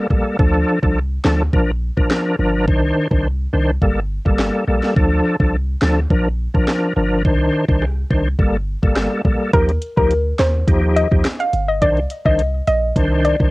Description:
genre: dancehall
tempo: 105 BPM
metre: 4/4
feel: straight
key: C dorian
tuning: A4 = 445 Hz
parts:
  - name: bright tonewheel organ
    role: accompaniment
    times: 0.0-13.5 s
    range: Eb3 to C5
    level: -18 LUFS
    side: equal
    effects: chorus vibrato, fast rotary speaker, cassette tape
  - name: warm 808-style bass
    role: bass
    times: 0.1-13.5 s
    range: G1 to Eb2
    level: -19 LUFS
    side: equal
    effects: none
  - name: island pop drum kit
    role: drums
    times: 0.1-13.5 s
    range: hi-hat, kick drum, rim click, snare drum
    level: -19 LUFS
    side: equal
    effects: cassette tape
  - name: soft round pluck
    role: melody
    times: 9.5-13.3 s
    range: Bb4 to F5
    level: -19 LUFS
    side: equal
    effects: chorus, tape echo
room: little or no reverb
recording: home recording on cassette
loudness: -15 LUFS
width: side -21 dB against mid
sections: 0.0-9.5 A section; 9.5-13.5 B section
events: none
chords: 0.4 Dm; 1.5 Bb; 2.7 Cmadd9; 3.8 Gmadd9; 5.0 Dm; 6.1 Bb; 7.2 Cmadd9; 8.4 Gmadd9; 9.5 Ebadd9; 11.8 Cmadd9

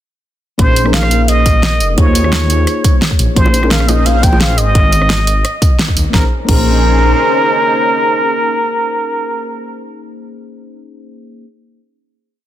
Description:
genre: liquid drum and bass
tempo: 173 BPM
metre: 4/4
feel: straight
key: Bb minor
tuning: A4 = 438 Hz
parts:
  - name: trumpet with plunger mute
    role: melody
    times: 0.6-9.6 s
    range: Bb4 to G5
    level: -16 LUFS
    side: right 1 dB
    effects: digital delay
  - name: mellow FM electric piano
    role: accompaniment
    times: 0.6-11.4 s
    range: Bb3 to Db5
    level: -20 LUFS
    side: left 3 dB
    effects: chorus, digital delay
  - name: dark detuned saw bass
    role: bass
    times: 0.6-7.1 s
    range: F1 to Eb2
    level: -14 LUFS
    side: equal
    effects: none
  - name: electronic kick drum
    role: drums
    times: 0.6-6.6 s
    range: none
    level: -12 LUFS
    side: equal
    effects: studio reverb
  - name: pop drum kit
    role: drums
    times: 0.6-6.6 s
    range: crash cymbal, hi-hat, rim click, snare drum, tambourine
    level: -17 LUFS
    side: equal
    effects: studio reverb
  - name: lush unison pad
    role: sustained chords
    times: 3.4-9.2 s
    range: C4 to C5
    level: -20 LUFS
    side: left 1 dB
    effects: chorus, phaser
  - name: bongos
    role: percussion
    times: 3.5-4.6 s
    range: none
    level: -22 LUFS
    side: right 1 dB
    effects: none
room: light reverb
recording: dense, heavily limited modern master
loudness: -10 LUFS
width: side -12 dB against mid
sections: 0.6-6.1 drop; 6.1-8.9 final chord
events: drop 0.6-6.1; band accent 5.8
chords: 0.6 Bbm11; 2.0 Eb9sus4; 3.4 Bbm11; 4.6 Ab69; 6.1 Bbm11

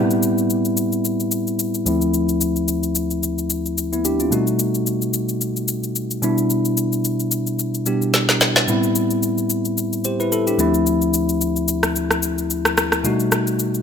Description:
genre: amapiano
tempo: 110 BPM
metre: 4/4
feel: swing 55% on 16ths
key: A minor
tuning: A4 = 440 Hz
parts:
  - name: bell-like tine electric piano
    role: accompaniment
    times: 0.0-13.8 s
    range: D2 to C5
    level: -19 LUFS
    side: left 1 dB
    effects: low-pass filter
  - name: electronic shaker, snare drum and rim click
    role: drums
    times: 0.1-13.8 s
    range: none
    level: -20 LUFS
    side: left 2 dB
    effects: none
room: moderate concert hall reverb, RT60 1.7 s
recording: none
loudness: -17 LUFS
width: side -7 dB against mid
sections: 0.0-13.8 A section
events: filter sweep on tine electric piano 0.0-13.8; drum fill 8.1-8.7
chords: 0.0 Am9; 1.9 Dm9; 4.3 B7b13; 6.2 Em7/B; 8.7 Am9; 10.6 Dm9; 13.0 B7b13

